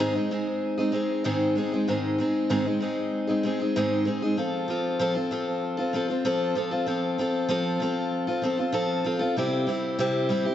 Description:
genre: rock.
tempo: 96 BPM.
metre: 4/4.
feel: straight.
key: unclear.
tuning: A4 = 440 Hz.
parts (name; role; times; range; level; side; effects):
picked steel-string acoustic guitar; solo; 0.0-10.5 s; Ab2 to A4; -24 LUFS; equal; analog delay.
room: moderate scoring stage reverb, RT60 1.7 s.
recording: nothing above 7.8 kHz.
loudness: -24 LUFS.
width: side -11 dB against mid.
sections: 0.0-9.4 A section; 9.4-10.5 B section.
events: none.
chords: 0.0 Ab; 4.4 F; 9.4 C.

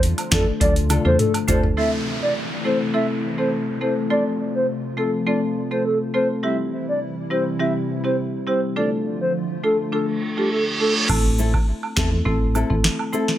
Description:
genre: dancehall.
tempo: 103 BPM.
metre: 4/4.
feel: straight.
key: A minor.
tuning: A4 = 439 Hz.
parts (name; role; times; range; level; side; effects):
hollow soft pad; sustained chords; 0.0-11.1 s; C3 to F4; -29 LUFS; left 2 dB; ensemble chorus.
organ-like FM bass; bass; 0.0-1.7, 11.1-12.8 s; G1 to F2; -21 LUFS; equal; none.
booming analog drum machine; drums; 0.0-1.8, 11.1-13.4 s; crash cymbal, hi-hat, kick drum, snare drum, toms; -21 LUFS; equal; none.
woodblock and cabasa; percussion; 0.2-1.6, 11.1-13.3 s; none; -30 LUFS; right 5 dB; none.
hollow clarinet-like synth lead; melody; 0.3-10.9 s; G4 to E5; -24 LUFS; equal; chorus, tape echo.
marimba with medium mallets; accompaniment; 0.3-13.3 s; G3 to A4; -24 LUFS; equal; sidechain pumping.
nylon-string guitar; arpeggios; 0.3-1.7, 11.4-13.3 s; C4 to A4; -30 LUFS; left 7 dB; tape echo.
downlifter and reverse cymbal; sound effects; 1.8-6.4, 10.2-11.1 s; none; -28 LUFS; right 2 dB; none.
room: little or no reverb.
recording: none.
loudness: -19 LUFS.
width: side -12 dB against mid.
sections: 0.0-1.8 A section; 1.8-11.1 B section; 11.1-13.4 C section.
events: drum fill 0.6-1.8; reverse cymbal 10.2-11.1.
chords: 0.0 Dm; 1.8 Am; 4.1 F; 6.4 C; 8.8 Dm; 11.1 Am.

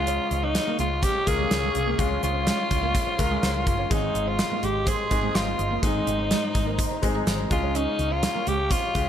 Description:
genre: 1980s-style pop.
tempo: 125 BPM.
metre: 4/4.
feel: straight.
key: unclear.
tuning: A4 = 440 Hz.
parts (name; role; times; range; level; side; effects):
raspy alto saxophone; melody; 0.0-9.1 s; Eb4 to Ab4; -27 LUFS; equal; tape echo.
clear baby grand piano; accompaniment; 0.0-9.1 s; Ab2 to Bb4; -31 LUFS; left 4 dB; none.
glassy FM pad; sustained chords; 0.0-9.1 s; Ab3 to Db6; -33 LUFS; equal; ensemble chorus, built-in reverb.
twelve-string electric guitar; riff; 0.0-9.0 s; Ab3 to Db4; -34 LUFS; right 4 dB; ensemble chorus, tape echo.
vintage muted fingered electric bass; bass; 0.0-9.1 s; G1 to Db2; -29 LUFS; equal; none.
gated 80s drum kit; drums; 0.1-9.1 s; hi-hat, kick drum, snare drum; -27 LUFS; equal; none.
room: moderate echo chamber reverb, RT60 2.1 s.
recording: lossy compression artefacts.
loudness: -22 LUFS.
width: side -9 dB against mid.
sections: 0.0-9.1 A section.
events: none.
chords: 0.0 Db; 3.9 Ab; 7.5 Db.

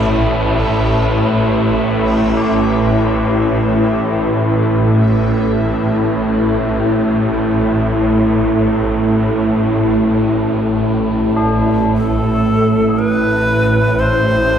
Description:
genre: dark ambient drone.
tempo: free time.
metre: none.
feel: none.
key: unclear.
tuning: A4 = 440 Hz.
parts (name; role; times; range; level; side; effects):
deep dark ambient pad; sustained chords; 0.0-14.6 s; A3 to B4; -16 LUFS; equal; chorus, built-in reverb.
tubular bells; arpeggios; 0.0-14.6 s; D4 to G4; -27 LUFS; left 2 dB; none.
swarming drone; drone; 0.0-14.6 s; A1 to A2; -16 LUFS; equal; built-in reverb.
bubbling stepped-filter texture; texture; 0.0-14.6 s; E5; -32 LUFS; right 1 dB; chorus, built-in reverb.
breathy bright long shakuhachi; melody; 12.0-14.6 s; A4 to C5; -16 LUFS; equal; dub echo.
room: wet spring reverb, RT60 2.4 s.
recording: echo-heavy mix.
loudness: -12 LUFS.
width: side -8 dB against mid.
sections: 0.0-12.0 A section; 12.0-14.6 B section.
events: fade-out on synth texture 0.0-12.0.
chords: 0.0 A5; 12.0 Am.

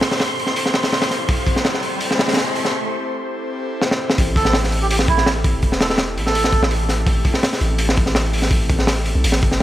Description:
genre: drum and bass, jungle.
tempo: 166 BPM.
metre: 4/4.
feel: straight.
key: A minor.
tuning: A4 = 441 Hz.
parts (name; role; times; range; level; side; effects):
airy breathy pad; sustained chords; 0.0-9.6 s; A3 to C5; -26 LUFS; left 1 dB; chorus.
crunchy breakbeat drum kit; drums; 0.0-9.6 s; hi-hat, kick drum, snare drum; -18 LUFS; equal; none.
riser; sound effects; 0.3-2.7 s; none; -27 LUFS; equal; none.
wind-like tuned noise texture; texture; 0.0-2.7 s; C6; -27 LUFS; right 1 dB; built-in reverb.
long sustained 808-style bass; bass; 4.2-9.6 s; E1 to B1; -21 LUFS; equal; none.
melodica; melody; 4.4-6.6 s; E4 to A4; -23 LUFS; right 4 dB; dub echo.
room: light reverb, small room ambience.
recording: none.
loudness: -16 LUFS.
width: side -13 dB against mid.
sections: 0.0-4.2 A section; 4.2-9.6 B section.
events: build-up 0.0-4.2; riser 0.3-2.7; break 2.7-4.2; drum fill 3.8-4.2; drop 4.2-9.6.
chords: 0.0 Am7.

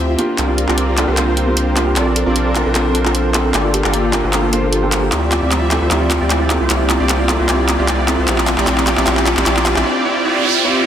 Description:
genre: future bass.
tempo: 152 BPM.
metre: 4/4.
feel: swing 53% on 16ths, half-time.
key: G dorian.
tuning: A4 = 440 Hz.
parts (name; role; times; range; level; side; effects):
felt-muted upright piano; accompaniment; 0.0-9.8 s; Bb3 to C5; -21 LUFS; equal; tape echo.
bright studio string section; sustained chords; 0.0-9.8 s; Bb2 to E5; -28 LUFS; left 2 dB; none.
big bright polysynth; riff; 0.0-10.9 s; Bb3 to D5; -19 LUFS; right 1 dB; chorus, cassette tape, tape echo.
saturated sub bass; bass; 0.0-9.8 s; G1 to D2; -19 LUFS; left 1 dB; none.
riser and noise sweep; sound effects; 4.5-10.9 s; none; -24 LUFS; right 3 dB; none.
soft round pluck; arpeggios; 0.1-9.8 s; E4 to G5; -25 LUFS; right 2 dB; chorus, tape echo.
pop drum kit; drums; 0.2-9.8 s; handclaps, hi-hat; -19 LUFS; equal; soft clipping on snare.
room: moderate lush hall reverb, RT60 2.4 s.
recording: dense, heavily limited modern master.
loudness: -13 LUFS.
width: side -9 dB against mid.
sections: 0.0-10.9 A section.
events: build-up 0.0-10.9; drum fill 0.0-9.9; filter sweep on analog polysynth 0.0-10.9; filter sweep on synth arpeggio sound 0.0-10.9; noise sweep 9.9-10.9.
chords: 0.2 C9sus4; 2.0 Bbmaj9; 3.5 Gm9; 5.1 Dm11; 6.5 C9sus4; 8.3 Bbmaj9; 9.9 G5.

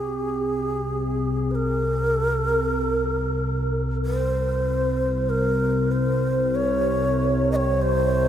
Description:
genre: dark ambient drone.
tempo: 48 BPM.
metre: 4/4.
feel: straight.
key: unclear.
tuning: A4 = 437 Hz.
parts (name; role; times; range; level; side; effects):
breathy long shakuhachi; melody; 0.0-8.3 s; Ab4 to Eb5; -24 LUFS; equal; analog delay.
analog drone; drone; 0.0-8.3 s; C2 to C3; -24 LUFS; equal; chorus.
room: wet huge ambient reverb, RT60 7.3 s.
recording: dreamy mix soaked in reverb.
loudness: -21 LUFS.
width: side -10 dB against mid.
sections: 0.0-8.3 A section.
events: none.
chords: none.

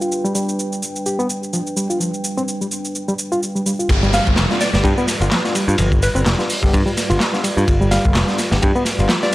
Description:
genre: breakbeat, breaks.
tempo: 127 BPM.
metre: 4/4.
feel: swing 56% on 16ths.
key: unclear.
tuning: A4 = 440 Hz.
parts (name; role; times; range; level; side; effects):
dark analog pad; sustained chords; 0.0-9.3 s; G3 to G5; -26 LUFS; right 1 dB; chorus, sidechain pumping.
reed electric piano; riff; 0.0-9.2 s; F3 to G4; -22 LUFS; equal; analog delay.
punchy analog drum machine; drums; 0.0-9.3 s; handclaps, hi-hat, shaker; -26 LUFS; right 1 dB; none.
modern bright picked electric bass; bass; 3.9-9.1 s; F1 to G2; -18 LUFS; equal; none.
crunchy breakbeat drum kit; drums; 3.9-9.3 s; hi-hat, kick drum, ride cymbal, snare drum; -19 LUFS; equal; none.
downlifter; sound effects; 3.9-7.7 s; none; -26 LUFS; equal; none.
hollow square pluck; melody; 4.1-9.3 s; B4 to F5; -23 LUFS; equal; chorus, old record sound, analog delay.
overdriven tine electric piano; stabs; 4.5-9.3 s; G3 to G4; -26 LUFS; left 2 dB; fast tremolo, analog delay.
room: light reverb.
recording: dry, gritty hardware recording.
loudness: -16 LUFS.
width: side -17 dB against mid.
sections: 0.0-3.9 A section; 3.9-9.3 B section.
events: filter sweep on reed electric piano 0.0-3.9; drop 3.9-9.3.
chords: 0.0 G7.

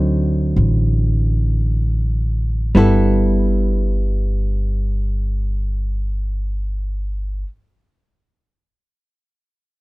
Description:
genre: jazz ballad.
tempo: free time.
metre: none.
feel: none.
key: G major.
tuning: A4 = 441 Hz.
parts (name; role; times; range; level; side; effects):
hollow-body jazz guitar; accompaniment; 0.0-7.5 s; D3 to B5; -20 LUFS; right 1 dB; none.
upright bass; bass; 0.0-7.4 s; G1 to D2; -18 LUFS; equal; none.
room: light reverb.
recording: dark, warm production.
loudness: -16 LUFS.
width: side -21 dB against mid.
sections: 0.0-2.8 A section; 2.8-7.4 B section.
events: slowing down 0.0-2.8.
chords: 0.0 D7b9; 2.8 G69.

